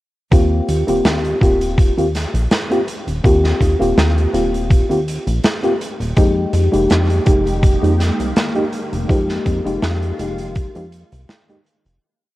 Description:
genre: vaporwave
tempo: 82 BPM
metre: 4/4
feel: swing 54% on 16ths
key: Eb major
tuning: A4 = 436 Hz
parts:
  - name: mellow FM electric piano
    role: accompaniment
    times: 0.3-11.6 s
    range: Ab3 to G4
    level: -18 LUFS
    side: left 1 dB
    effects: wide subtle chorus, tape echo
  - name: chorused synth bass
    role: bass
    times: 0.3-12.0 s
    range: Eb1 to F2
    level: -19 LUFS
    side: equal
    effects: tube saturation
  - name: big rock drum kit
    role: drums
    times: 0.3-12.0 s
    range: hi-hat, snare drum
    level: -22 LUFS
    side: right 1 dB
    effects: none
  - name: electronic kick drum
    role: drums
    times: 0.3-10.7 s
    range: none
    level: -14 LUFS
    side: equal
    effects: none
  - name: soft string machine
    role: sustained chords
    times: 6.6-12.0 s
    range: Eb3 to G4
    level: -26 LUFS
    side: equal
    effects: phaser, ensemble chorus
room: little or no reverb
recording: worn, warbling old tape, cassette tape, warbly pitch drift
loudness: -14 LUFS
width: side -17 dB against mid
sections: 0.3-12.0 groove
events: fade-out 8.1-12.0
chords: 0.3 Eb69; 6.2 Fm11

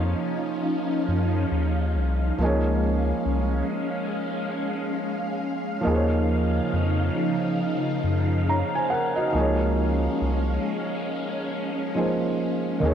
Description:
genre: lo-fi hip hop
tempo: 69 BPM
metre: 4/4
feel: swing 61% on 16ths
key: Db major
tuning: A4 = 441 Hz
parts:
  - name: felt-muted upright piano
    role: accompaniment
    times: 0.0-12.9 s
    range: Eb3 to Bb5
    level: -26 LUFS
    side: right 2 dB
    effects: low-pass filter
  - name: string machine, violas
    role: sustained chords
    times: 0.0-12.9 s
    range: Db3 to F5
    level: -27 LUFS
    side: left 1 dB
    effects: phaser, ensemble chorus, low-pass filter
  - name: round analog bass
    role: bass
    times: 0.0-12.9 s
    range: C2 to Gb2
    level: -24 LUFS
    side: left 1 dB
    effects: none
room: moderate cathedral reverb, RT60 5.9 s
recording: dreamy mix soaked in reverb, cassette tape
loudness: -22 LUFS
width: side -9 dB against mid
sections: 0.0-12.9 A section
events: none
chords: 0.0 Ebm9; 2.4 Db; 5.9 Ebm9; 9.3 Dbmaj7

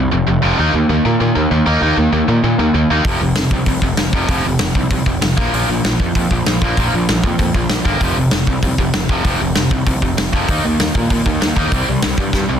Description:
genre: punk rock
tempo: 194 BPM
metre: 4/4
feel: straight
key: unclear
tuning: A4 = 437 Hz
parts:
  - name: tight distorted guitar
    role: riff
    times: 0.0-12.6 s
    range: F2 to Eb4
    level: -16 LUFS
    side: equal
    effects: distortion
  - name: fuzz picked electric bass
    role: bass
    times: 0.0-12.6 s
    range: F1 to Bb2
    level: -19 LUFS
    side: equal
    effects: overdrive
  - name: big rock drum kit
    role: drums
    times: 3.0-12.4 s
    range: hi-hat, kick drum, snare drum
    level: -18 LUFS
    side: equal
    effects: none
room: little or no reverb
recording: dense, heavily limited modern master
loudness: -13 LUFS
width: side -8 dB against mid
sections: 0.0-12.6 A section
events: drum fill 12.3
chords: 0.0 F5; 0.6 Eb5; 3.1 F5; 5.4 Bb5; 8.0 F5; 10.5 Eb5; 11.7 C5

